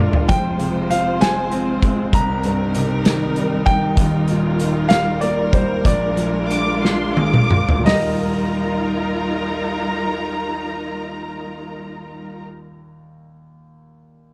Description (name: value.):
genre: six-eight pop ballad.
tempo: 57-65 BPM (dotted quarters).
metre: 6/8.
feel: straight.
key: Eb major.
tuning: A4 = 440 Hz.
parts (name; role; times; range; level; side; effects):
clear concert grand piano; accompaniment; 0.0-14.3 s; Eb1 to Bb4; -26 LUFS; equal; none.
warm studio string section; sustained chords; 0.0-12.4 s; G3 to C5; -25 LUFS; equal; none.
loose indie drum kit; drums; 0.1-8.0 s; hi-hat, kick drum, snare drum, toms; -21 LUFS; equal; none.
warm grand piano; melody; 0.3-12.4 s; C5 to Bb5; -25 LUFS; equal; none.
rich studio violin section; second line; 6.5-12.4 s; Bb5 to D6; -29 LUFS; equal; none.
room: light reverb, studio reverb.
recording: dark, warm production, lossy compression artefacts.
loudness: -19 LUFS.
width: mono.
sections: 0.0-7.9 A section; 7.9-12.1 B section.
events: drum fill 0.0, 6.8-7.9; slowing down 4.0-7.9.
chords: 0.3 Fm; 2.1 Cm7; 4.0 Ebadd9; 5.8 Bb7; 7.9 Ebadd9.